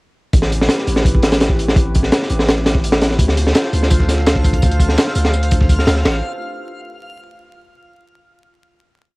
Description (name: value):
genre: drum and bass, jungle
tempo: 168 BPM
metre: 4/4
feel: straight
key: A minor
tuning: A4 = 440 Hz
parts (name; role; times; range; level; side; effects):
- warbly tape-like pad; sustained chords; 0.3-6.2 s; A3 to F5; -24 LUFS; equal; chorus, built-in reverb, cassette tape
- long sustained 808-style bass; bass; 0.3-6.2 s; A1 to D2; -18 LUFS; equal; none
- crunchy breakbeat drum kit; drums; 0.3-6.1 s; hi-hat, kick drum, ride cymbal, snare drum; -14 LUFS; equal; cassette tape
- dusty soul sampler-style drum kit; drums; 3.2-6.0 s; hi-hat, snare drum, tambourine; -29 LUFS; equal; high-pass filter on perc, cassette tape, high-pass filter on hats, high-pass filter on snare
- backwards swelling texture; texture; 3.9-6.1 s; F4 to F6; -30 LUFS; left 1 dB; built-in reverb, cassette tape
room: light reverb, small room ambience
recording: home recording on cassette, vinyl crackle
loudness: -13 LUFS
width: side -25 dB against mid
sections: 0.3-6.0 drop; 6.0-7.5 final chord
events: drop 0.3-6.0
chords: 0.3 Am9; 3.2 Dm7; 6.0 Am9